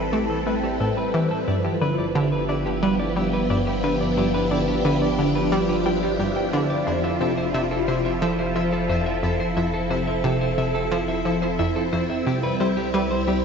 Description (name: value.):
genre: ambient.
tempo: 89 BPM.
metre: 4/4.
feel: straight.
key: unclear.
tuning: A4 = 436 Hz.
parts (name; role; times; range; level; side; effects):
phased string machine; sustained chords; 0.0-13.4 s; F3 to B4; -24 LUFS; right 1 dB; ensemble chorus, phaser.
clean electric guitar; arpeggios; 0.0-13.4 s; G4 to G5; -30 LUFS; left 3 dB; auto-pan, low-pass filter, tape echo.
round analog bass; bass; 0.0-13.4 s; F1 to C2; -34 LUFS; equal; none.
pulsing gated texture; texture; 0.0-13.4 s; E4 to E5; -33 LUFS; equal; chorus, built-in reverb.
analog pluck; riff; 0.1-13.4 s; F2 to A3; -25 LUFS; equal; chorus, tape echo.
room: wet plate reverb, RT60 2.2 s.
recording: dreamy mix soaked in reverb, nothing above 7.7 kHz.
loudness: -20 LUFS.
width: side -6 dB against mid.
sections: 0.0-13.4 A section.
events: none.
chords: 0.0 Am9; 1.5 G7; 6.9 Fmaj7; 12.3 Cmaj7.